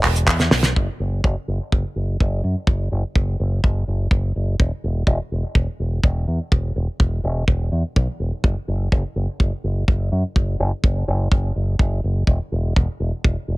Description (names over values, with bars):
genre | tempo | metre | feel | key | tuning
italo disco | 125 BPM | 4/4 | straight | unclear | A4 = 441 Hz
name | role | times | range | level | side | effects
fingered electric bass with an envelope filter | bass | 0.0-13.6 s | E1 to F#2 | -21 LUFS | equal | tube saturation
damped 70s drum kit | drums | 0.0-0.7 s | cabasa, handclaps, hi-hat, snare drum | -17 LUFS | right 1 dB | low-pass filter on hats, low-pass filter on snare, low-pass filter on perc, low-pass filter on room
kick drum | drums | 0.0-13.3 s | none | -17 LUFS | equal | none
room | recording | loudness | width
little or no reverb | none | -18 LUFS | side -22 dB against mid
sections
0.8-13.6 A section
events
drum fill 0.4-0.8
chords
none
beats
0.28 | 0.76 1.24 1.72 2.20 | 2.68 3.16 3.64 4.12 | 4.60 5.08 5.56 6.04 | 6.52 7.00 7.48 7.96 | 8.44 8.92 9.40 9.88 | 10.36 10.84 11.32 11.80 | 12.28 12.76 13.24